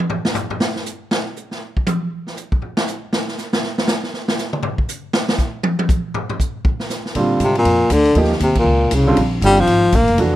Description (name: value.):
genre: jazz, small-group swing and bop.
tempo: 238 BPM.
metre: 4/4.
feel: swing 60% on 8ths.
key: Bb mixolydian.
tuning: A4 = 441 Hz.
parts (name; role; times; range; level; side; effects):
swinging big-band drum kit; drums; 0.0-10.2 s; crash cymbal, hi-hat, kick drum, ride cymbal, snare drum, toms; -20 LUFS; equal; none.
upright bass; bass; 7.1-10.4 s; F1 to Bb2; -18 LUFS; equal; none.
warm grand piano; accompaniment; 7.2-10.4 s; D3 to G4; -18 LUFS; right 2 dB; none.
breathy baritone saxophone; melody; 7.4-10.2 s; Bb2 to Bb3; -15 LUFS; left 1 dB; none.
room: light reverb.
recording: none.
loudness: -16 LUFS.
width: side -14 dB against mid.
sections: 0.0-7.2 A section; 7.2-10.4 B section.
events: drum solo 0.0-7.2; band accent 8.5.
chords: 0.0 N.C.; 7.2 Bb7; 8.2 Eb7; 9.2 Bb7.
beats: | 0.11 0.36 0.61 0.86 | 1.11 1.37 1.62 1.87 | 2.12 2.37 2.62 2.88 | 3.13 3.38 3.63 3.88 | 4.13 4.39 4.64 4.89 | 5.14 5.39 5.64 5.89 | 6.14 6.40 6.65 6.90 | 7.15 7.40 7.66 7.91 | 8.16 8.41 8.66 8.92 | 9.17 9.42 9.67 9.93 | 10.18.